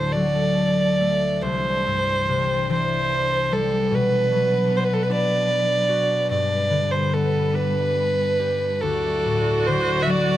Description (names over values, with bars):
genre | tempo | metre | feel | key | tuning
celtic folk, Celtic slow air | 49 BPM (dotted quarters) | 6/8 | uneven beats, rubato | unclear | A4 = 441 Hz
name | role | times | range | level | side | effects
dark fiddle | melody | 0.0-10.4 s | A4 to E5 | -21 LUFS | right 2 dB | none
concert harp | accompaniment | 0.0-10.4 s | C2 to G4 | -23 LUFS | left 3 dB | none
muted studio string section | sustained chords | 0.0-10.4 s | E3 to D5 | -30 LUFS | equal | none
rich viola | second line | 8.8-10.4 s | F#4 | -26 LUFS | right 1 dB | none
room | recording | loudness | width
light reverb | close, detailed microphones | -19 LUFS | side -13 dB against mid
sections
0.0-10.4 A section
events
none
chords
0.0 D; 1.4 Cadd9; 3.9 Bm; 6.3 G; 8.8 Dadd9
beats
0.15 | 1.43 2.70 | 3.92 5.11 | 6.32 7.56 | 8.83 10.09